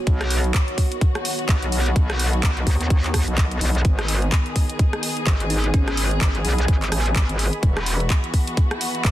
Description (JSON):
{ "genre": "bass house", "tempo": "127 BPM", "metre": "4/4", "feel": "swing 59% on 16ths", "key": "unclear", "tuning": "A4 = 440 Hz", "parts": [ { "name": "muted studio string section", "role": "sustained chords", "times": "0.0-9.1 s", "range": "D#3 to G#4", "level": "-30 LUFS", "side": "left 1 dB", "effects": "sidechain pumping" }, { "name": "deep dark ambient pad", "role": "texture", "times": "0.0-9.1 s", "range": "B3 to B5", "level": "-31 LUFS", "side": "right 2 dB", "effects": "chorus, built-in reverb, sidechain pumping" }, { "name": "metallic wobble bass", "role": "bass", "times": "0.1-9.1 s", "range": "E1 to D#2", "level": "-22 LUFS", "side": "equal", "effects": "chorus, tube saturation, sidechain pumping" }, { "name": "electronic kick drum", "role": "drums", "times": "0.1-9.1 s", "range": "none", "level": "-19 LUFS", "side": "equal", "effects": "small room ambience" }, { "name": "garage drum kit", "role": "drums", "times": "0.1-9.1 s", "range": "handclaps, hi-hat, rim click", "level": "-26 LUFS", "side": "equal", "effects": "small room ambience" }, { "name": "bell-like FM electric piano", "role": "melody", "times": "5.5-6.1 s", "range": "C#4 to D#4", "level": "-33 LUFS", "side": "left 1 dB", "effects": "chorus, digital delay" } ], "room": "digital ambience", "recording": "dense, heavily limited modern master", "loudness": "-18 LUFS", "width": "side -14 dB against mid", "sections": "0.0-9.1 A section", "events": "none", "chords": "0.1 B; 3.8 G#m; 7.6 Esus2" }